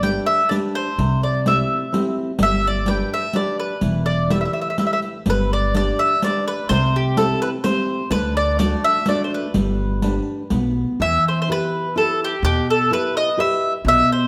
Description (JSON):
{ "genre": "italian folk, Italian serenade", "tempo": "126 BPM", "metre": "3/4", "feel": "straight", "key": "G major, E harmonic minor from 11.0 s", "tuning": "A4 = 438 Hz", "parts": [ { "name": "mandolin", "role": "melody", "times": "0.0-14.3 s", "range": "G4 to G5", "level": "-22 LUFS", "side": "equal", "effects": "none" }, { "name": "nylon-string guitar", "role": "accompaniment", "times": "0.0-14.3 s", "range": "B2 to B4", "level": "-26 LUFS", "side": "equal", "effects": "none" }, { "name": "upright bass", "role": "bass", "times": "0.0-14.0 s", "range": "E1 to E2", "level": "-25 LUFS", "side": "equal", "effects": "none" }, { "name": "riq", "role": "percussion", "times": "0.0-10.7 s", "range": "none", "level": "-27 LUFS", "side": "equal", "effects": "none" } ], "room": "wet recital hall reverb, RT60 1.5 s", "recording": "faint mains hum", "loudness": "-20 LUFS", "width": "mono", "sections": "0.0-11.0 A section; 11.0-14.3 B section", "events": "none", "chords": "0.0 G; 1.0 C; 2.4 G; 3.8 Em; 5.3 G; 6.7 C; 8.1 D; 9.5 G; 10.5 N.C.; 11.0 Em", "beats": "0.03 0.51 | 0.98 1.46 1.93 | 2.40 2.88 3.35 | 3.83 4.30 4.78 | 5.27 5.75 6.22 | 6.70 7.17 7.64 | 8.12 8.60 9.07 | 9.55 10.03 10.51 | 11.00 11.48 11.96 | 12.43 12.91 13.38 | 13.85" }